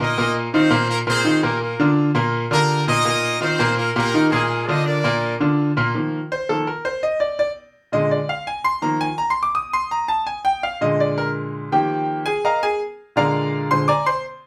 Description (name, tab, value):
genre	latin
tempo	166 BPM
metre	4/4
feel	straight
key	Eb major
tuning	A4 = 440 Hz
part	bright horn section	melody	0.0-5.4 s	Ab3 to Eb5	-23 LUFS	equal	none
part	bright concert grand piano	accompaniment	0.0-14.2 s	Bb2 to Eb6	-21 LUFS	equal	none
room	wet studio reverb, RT60 0.5 s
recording	band playing live in one room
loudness	-20 LUFS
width	mono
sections	0.0-5.9 A section; 5.9-14.5 B section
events	grand piano solo 5.9-14.5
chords	0.2 Ebsus2; 1.6 Bb; 3.0 Ebsus2; 4.5 Bb; 5.9 Ebsus2; 7.4 Bb7; 8.8 Ebsus2; 10.3 Bb7; 11.7 Ebsus2; 13.2 Bb7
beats	| 0.16 0.52 0.89 1.25 | 1.61 1.97 2.33 2.69 | 3.05 3.41 3.77 4.13 | 4.49 4.85 5.21 5.58 | 5.94 6.30 6.66 7.02 | 7.38 7.74 8.11 8.47 | 8.83 9.19 9.55 9.91 | 10.27 10.64 11.00 11.36 | 11.72 12.08 12.44 12.80 | 13.16 13.53 13.89